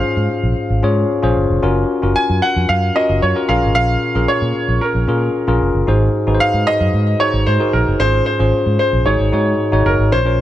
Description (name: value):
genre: 1980s-style pop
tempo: 113 BPM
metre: 4/4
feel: straight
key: Db major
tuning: A4 = 444 Hz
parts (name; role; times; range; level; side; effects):
- clear baby grand piano; melody; 0.0-10.4 s; Bb4 to Ab5; -18 LUFS; equal; digital delay
- tine electric piano; accompaniment; 0.0-10.4 s; Ab2 to Db5; -18 LUFS; left 2 dB; none
- vintage muted fingered electric bass; bass; 0.0-10.4 s; F1 to Bb2; -17 LUFS; right 1 dB; none
room: light reverb, small room ambience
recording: none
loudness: -13 LUFS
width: side -13 dB against mid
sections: 0.0-10.1 A section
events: none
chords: 0.0 Dbmaj7; 1.6 Gbmaj7; 3.5 Bbm7; 5.9 Ab7; 8.0 Dbmaj7/Ab; 9.1 Ab7sus4